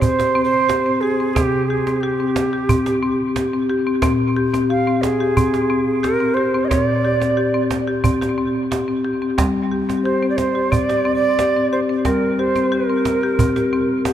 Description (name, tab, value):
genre	world meditative, meditative tuned percussion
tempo	90 BPM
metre	4/4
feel	straight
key	unclear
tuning	A4 = 440 Hz
part	Native American-style cedar flute	melody	0.0-14.1 s	G4 to F5	-20 LUFS	right 4 dB	diffuse ambient delay
part	marimba with medium mallets	arpeggios	0.0-14.1 s	Bb2 to G4	-18 LUFS	left 2 dB	diffuse ambient delay
part	cajon	percussion	0.0-14.1 s	none	-24 LUFS	right 3 dB	none
room	wet cathedral reverb, RT60 4.8 s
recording	dark, warm production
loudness	-16 LUFS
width	side -10 dB against mid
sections	0.0-14.1 A section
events	none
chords	0.0 C5; 4.0 N.C.; 9.4 Gm